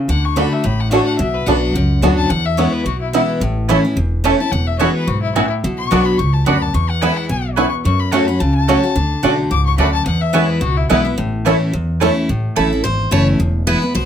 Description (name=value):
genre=bluegrass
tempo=216 BPM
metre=4/4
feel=swing 55% on 8ths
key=A major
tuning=A4 = 440 Hz
part: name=picked steel-string acoustic guitar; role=accompaniment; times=0.0-14.1 s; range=E2 to F#4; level=-18 LUFS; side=left 1 dB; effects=none
part: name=warm fiddle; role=second line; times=0.1-11.0 s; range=E4 to D6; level=-22 LUFS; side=left 7 dB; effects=none
part: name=upright bass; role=bass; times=0.1-14.1 s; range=E1 to F#2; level=-19 LUFS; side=equal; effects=none
part: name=bluegrass banjo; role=arpeggios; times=0.4-12.1 s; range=A3 to F#4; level=-18 LUFS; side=right 4 dB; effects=none
part: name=mandolin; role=stabs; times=3.7-13.8 s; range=A3 to A5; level=-21 LUFS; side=right 5 dB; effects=none
part: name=picked steel-string acoustic guitar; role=melody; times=12.6-14.1 s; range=A4 to C#5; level=-20 LUFS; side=right 2 dB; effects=none
room=light reverb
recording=close, detailed microphones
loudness=-14 LUFS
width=side -9 dB against mid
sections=0.0-12.3 A section; 12.3-14.1 B section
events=fiddle solo 0.0-12.3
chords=0.1 D; 1.2 Bm; 2.3 E; 3.4 A; 4.5 Eadd9; 5.6 Bm; 6.7 E; 7.8 F#m; 9.0 D; 10.1 E; 11.2 A; 13.4 E